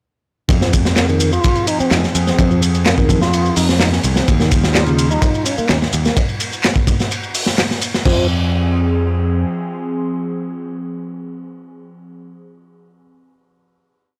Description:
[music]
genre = breakbeat, breaks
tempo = 127 BPM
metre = 4/4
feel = straight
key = F minor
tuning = A4 = 440 Hz
[part]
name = phased analog pad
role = sustained chords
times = 0.5-12.3 s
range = F3 to Ab4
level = -26 LUFS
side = equal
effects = phaser, chorus, sidechain pumping
[part]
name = picked electric bass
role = bass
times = 0.5-9.4 s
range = C2 to F2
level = -19 LUFS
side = equal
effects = none
[part]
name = crunchy breakbeat drum kit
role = drums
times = 0.5-8.2 s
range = crash cymbal, hi-hat, kick drum, ride cymbal, snare drum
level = -20 LUFS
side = equal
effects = none
[part]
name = punchy analog drum machine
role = drums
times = 0.5-8.0 s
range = handclaps, ride cymbal, shaker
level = -26 LUFS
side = equal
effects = none
[part]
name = tonewheel organ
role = riff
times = 0.6-8.3 s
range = Db3 to F4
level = -22 LUFS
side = equal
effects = slow rotary speaker, tube saturation, analog delay
[sound]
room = little or no reverb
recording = dry, gritty hardware recording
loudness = -16 LUFS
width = mono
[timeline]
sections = 0.5-8.1 drop; 8.1-11.8 final chord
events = drop 0.5-8.1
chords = 0.5 Fm; 4.3 Ebadd9; 6.2 N.C.; 8.1 Fm

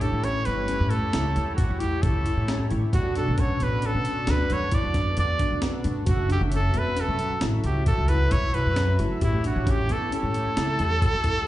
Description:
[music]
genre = progressive instrumental, band music in an uneven meter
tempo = 134 BPM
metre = 7/4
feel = straight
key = A mixolydian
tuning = A4 = 440 Hz
[part]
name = clear trumpet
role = melody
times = 0.0-11.5 s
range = E4 to D5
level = -28 LUFS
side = right 1 dB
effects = slapback echo, digital delay
[part]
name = chorused pulse-width pad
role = accompaniment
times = 0.0-11.5 s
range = F#3 to E5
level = -33 LUFS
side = equal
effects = slapback echo
[part]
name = tine electric piano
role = arpeggios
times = 0.0-11.5 s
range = B3 to G4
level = -32 LUFS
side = left 2 dB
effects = overdrive, fast stereo tremolo
[part]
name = upright bass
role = bass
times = 0.0-11.4 s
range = E1 to B2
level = -25 LUFS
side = equal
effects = none
[part]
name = breakbeat sampler-style drum kit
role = drums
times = 0.0-11.3 s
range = hi-hat, kick drum, snare drum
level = -26 LUFS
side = equal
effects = none
[sound]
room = light reverb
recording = live gig heard through the venue's PA, club reverb, nothing above 10.4 kHz, faint mains hum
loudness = -22 LUFS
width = side -14 dB against mid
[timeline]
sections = 0.0-11.5 A section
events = none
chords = 0.0 A7; 6.1 F#m7; 9.2 A7

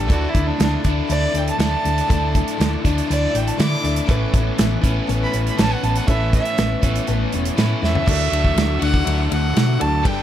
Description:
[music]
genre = folk rock and heartland rock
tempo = 120 BPM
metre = 4/4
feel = straight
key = D major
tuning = A4 = 442 Hz
[part]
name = warm fiddle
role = melody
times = 0.0-10.2 s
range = D4 to D6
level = -24 LUFS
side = right 2 dB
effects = tape echo
[part]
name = clear baby grand piano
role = accompaniment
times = 0.0-10.2 s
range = C#4 to D5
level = -35 LUFS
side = right 4 dB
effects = none
[part]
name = picked steel-string acoustic guitar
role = accompaniment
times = 0.0-10.2 s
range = A2 to A4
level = -26 LUFS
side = left 7 dB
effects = none
[part]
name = overdriven electric guitar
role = riff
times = 0.0-10.2 s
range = G2 to G4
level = -26 LUFS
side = right 1 dB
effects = none
[part]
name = hollow-body short-scale fingered electric bass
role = bass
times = 0.0-10.2 s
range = E1 to D3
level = -21 LUFS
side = equal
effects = none
[part]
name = tonewheel organ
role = sustained chords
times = 0.1-10.2 s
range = C#4 to D6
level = -34 LUFS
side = right 1 dB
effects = slow rotary speaker, chorus vibrato
[part]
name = natural country drum kit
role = drums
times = 0.1-10.2 s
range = crash cymbal, hi-hat, kick drum, ride cymbal, snare drum, toms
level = -21 LUFS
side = right 1 dB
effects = none
[sound]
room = light reverb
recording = dark, warm production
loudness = -16 LUFS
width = side -11 dB against mid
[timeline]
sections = 0.0-8.1 A section; 8.1-10.2 B section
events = fiddle solo 0.0-8.1; drum fill 7.8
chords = 0.1 Dsus2; 4.1 Aadd9; 8.1 Dadd9

